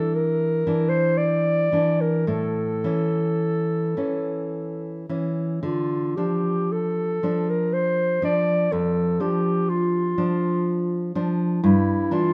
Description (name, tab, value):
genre	romantic duo for clarinet and classical guitar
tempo	52-62 BPM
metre	3/4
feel	rubato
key	D minor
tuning	A4 = 440 Hz
part	mellow clarinet	melody	0.0-12.3 s	E4 to D5	-26 LUFS	equal	none
part	nylon-string guitar	accompaniment	0.0-12.3 s	F2 to D4	-26 LUFS	equal	none
room	moderate recital hall reverb, RT60 1.7 s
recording	none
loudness	-23 LUFS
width	mono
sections	0.0-12.3 A section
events	none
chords	0.0 Gm6 (rootless); 2.3 A; 5.6 Dm; 8.7 Dm/F; 11.6 Fmaj7sus2/G